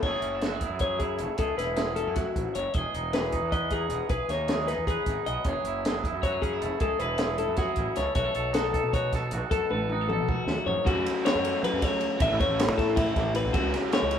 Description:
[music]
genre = math rock and midwest emo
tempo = 310 BPM (eighths)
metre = 7/8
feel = straight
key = unclear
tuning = A4 = 440 Hz
[part]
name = twangy electric guitar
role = accompaniment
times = 0.0-10.9 s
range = E2 to B4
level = -32 LUFS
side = right 6 dB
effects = none
[part]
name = electric guitar at the edge of break-up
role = arpeggios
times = 0.0-14.2 s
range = E4 to E5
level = -29 LUFS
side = left 5 dB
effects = none
[part]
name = crunchy overdriven guitar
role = riff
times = 0.0, 10.9-14.2 s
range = A2 to F#4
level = -31 LUFS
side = right 2 dB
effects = none
[part]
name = fuzz fingered electric bass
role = bass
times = 0.0-14.2 s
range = E1 to F#3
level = -32 LUFS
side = right 1 dB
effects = overdrive
[part]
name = compact cocktail drum kit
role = drums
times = 0.0-14.2 s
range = crash cymbal, hi-hat, kick drum, ride cymbal, snare drum, toms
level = -30 LUFS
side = right 1 dB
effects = none
[sound]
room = moderate large studio reverb, RT60 0.9 s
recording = band playing live in one room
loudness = -25 LUFS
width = side -8 dB against mid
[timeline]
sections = 0.0-10.9 A section; 10.9-14.2 B section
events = drum fill 9.7-10.9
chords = 0.0 E6; 2.7 Emaj7; 5.5 F#m9; 8.2 B9; 10.9 F#m; 12.2 Aadd9; 13.6 C#m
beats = | 0.03 0.23 0.42 0.61 0.81 1.00 1.20 | 1.39 1.58 1.78 1.97 2.17 2.36 2.55 | 2.75 2.94 3.13 3.33 3.52 3.71 3.91 | 4.10 4.29 4.49 4.68 4.88 5.07 5.26 | 5.46 5.65 5.84 6.04 6.23 6.42 6.62 | 6.81 7.00 7.20 7.39 7.58 7.78 7.97 | 8.16 8.35 8.55 8.74 8.93 9.13 9.32 | 9.51 9.71 9.90 10.09 10.28 10.48 10.67 | 10.86 11.05 11.25 11.44 11.63 11.82 12.01 | 12.21 12.40 12.59 12.78 12.97 13.17 13.36 | 13.55 13.74 13.93 14.13

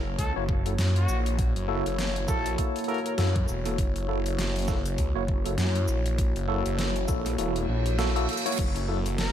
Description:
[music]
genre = glitch hop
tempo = 100 BPM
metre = 4/4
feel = swing 58% on 16ths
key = unclear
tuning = A4 = 440 Hz
[part]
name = dark analog pad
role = sustained chords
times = 0.0-9.3 s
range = A#3 to C#5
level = -33 LUFS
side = left 1 dB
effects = chorus, sidechain pumping
[part]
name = phased detuned saw bass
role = bass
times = 0.0-9.3 s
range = E1 to F#2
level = -28 LUFS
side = equal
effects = phaser, tube saturation
[part]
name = warm trumpet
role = melody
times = 0.2-3.1, 9.2-9.3 s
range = F#4 to A#4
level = -36 LUFS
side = right 1 dB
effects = diffuse ambient delay
[part]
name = dubstep drum kit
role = drums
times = 0.2-9.3 s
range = crash cymbal, hi-hat, shaker, snare drum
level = -34 LUFS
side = equal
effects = overdrive, small room ambience
[part]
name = electronic kick drum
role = drums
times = 0.2-8.7 s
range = none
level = -28 LUFS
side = equal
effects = overdrive, small room ambience
[part]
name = tine electric piano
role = stabs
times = 0.4-9.0 s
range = A#3 to C#5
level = -32 LUFS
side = equal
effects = medium stereo tremolo, sidechain pumping, diffuse ambient delay
[part]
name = reverse cymbal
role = sound effects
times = 7.6-8.6 s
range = none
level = -36 LUFS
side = right 4 dB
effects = none
[sound]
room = light reverb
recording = none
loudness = -24 LUFS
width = side -10 dB against mid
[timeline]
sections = 0.0-9.3 A section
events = kick drops out 7.4-8.6; reverse cymbal 7.6-8.6; drum fill 8.3-8.6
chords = 0.0 F#7#9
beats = 0.19 0.79 | 1.39 1.99 2.59 3.19 | 3.79 4.39 4.99 5.59 | 6.19 6.79 7.39 7.99 | 8.59 9.19

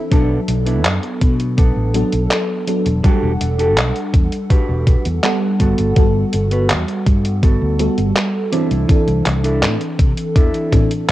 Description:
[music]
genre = vaporwave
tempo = 82 BPM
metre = 4/4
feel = straight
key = G major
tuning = A4 = 440 Hz
[part]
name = FM electric piano with soft pad layer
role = accompaniment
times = 0.0-11.1 s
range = E3 to F#5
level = -20 LUFS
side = equal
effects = tremolo, wide subtle chorus, analog delay
[part]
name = mellow electric guitar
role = riff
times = 0.1-10.9 s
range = B3 to B4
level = -24 LUFS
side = right 1 dB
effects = wide subtle chorus, analog delay
[part]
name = fretless electric bass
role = bass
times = 0.1-10.5 s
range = E1 to C3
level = -18 LUFS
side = equal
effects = wide subtle chorus
[part]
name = detuned 8-bit digital drum machine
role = drums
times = 0.1-11.1 s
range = handclaps, hi-hat, toms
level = -21 LUFS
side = equal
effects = studio reverb, cassette tape
[part]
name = electronic kick drum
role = drums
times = 0.1-10.9 s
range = none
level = -14 LUFS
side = equal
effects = studio reverb, cassette tape
[sound]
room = light reverb, digital ambience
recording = home recording on cassette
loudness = -14 LUFS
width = side -15 dB against mid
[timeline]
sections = 0.0-11.1 A section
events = drum fill 10.7-11.1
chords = 0.1 Bm7; 3.0 Em11; 5.6 Gmaj9; 8.5 C69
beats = | 0.12 0.85 1.58 2.31 | 3.04 3.77 4.51 5.24 | 5.97 6.70 7.43 8.16 | 8.90 9.63 10.36 11.09

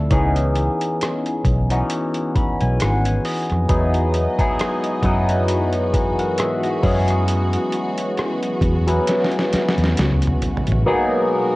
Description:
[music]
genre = R&B, neo-soul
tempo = 67 BPM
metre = 4/4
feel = swing 56% on 16ths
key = unclear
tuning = A4 = 438 Hz
[part]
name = barky tine electric piano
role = accompaniment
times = 0.0-11.6 s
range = E3 to B5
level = -20 LUFS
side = left 1 dB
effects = phaser
[part]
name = vintage muted fingered electric bass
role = bass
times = 0.0-10.8 s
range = G#1 to G#2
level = -20 LUFS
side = equal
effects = transformer saturation
[part]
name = boom bap sampler-style drum kit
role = drums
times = 0.1-10.9 s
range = hi-hat, kick drum, rim click, snare drum, toms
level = -22 LUFS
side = equal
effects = none
[part]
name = warm studio string section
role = sustained chords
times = 3.7-11.6 s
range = B2 to D#5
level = -29 LUFS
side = right 2 dB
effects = none
[sound]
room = light reverb, digital ambience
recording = worn, warbling old tape, cassette tape, warbly pitch drift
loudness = -17 LUFS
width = side -20 dB against mid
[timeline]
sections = 0.0-10.9 A section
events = tine electric piano fill 1.9-3.7; drum fill 9.1-10.9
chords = 0.1 C#m9; 3.7 Emaj9; 6.8 F#9sus4; 10.9 G#m9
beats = | 0.12 1.01 1.91 2.80 | 3.70 4.59 5.49 6.38 | 7.28 8.18 9.07 9.97 | 10.86

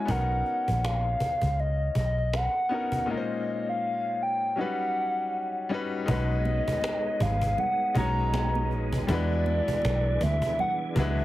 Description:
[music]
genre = R&B, neo-soul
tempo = 80 BPM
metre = 4/4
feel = swing 57% on 16ths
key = unclear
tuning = A4 = 440 Hz
[part]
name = hollow clarinet-like synth lead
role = melody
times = 0.0-11.2 s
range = D5 to A#5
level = -28 LUFS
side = equal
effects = chorus
[part]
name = bright grand piano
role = accompaniment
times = 0.0-11.2 s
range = A#2 to C#5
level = -33 LUFS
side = left 4 dB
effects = none
[part]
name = vintage muted fingered electric bass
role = bass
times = 0.1-11.2 s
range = G#1 to E2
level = -27 LUFS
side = equal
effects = none
[part]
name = cajon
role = drums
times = 0.1-11.2 s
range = none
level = -34 LUFS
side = equal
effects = none
[part]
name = tonewheel organ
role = sustained chords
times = 6.1-11.2 s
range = E3 to G#4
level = -36 LUFS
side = right 2 dB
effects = fast rotary speaker, chorus vibrato
[part]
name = congas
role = percussion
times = 6.5-11.2 s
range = none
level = -38 LUFS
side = right 7 dB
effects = none
[sound]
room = light reverb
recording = heavily compressed radio sound, multiband compression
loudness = -25 LUFS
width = side -15 dB against mid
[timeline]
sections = 0.0-6.1 A section; 6.1-11.2 B section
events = break 3.1-6.1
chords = 0.1 Bmaj9; 3.1 A#m11; 4.6 D#7alt; 6.1 B6; 9.1 E7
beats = | 0.09 0.84 1.59 2.34 | 3.09 3.84 4.59 5.34 | 6.09 6.84 7.59 8.34 | 9.09 9.84 10.59

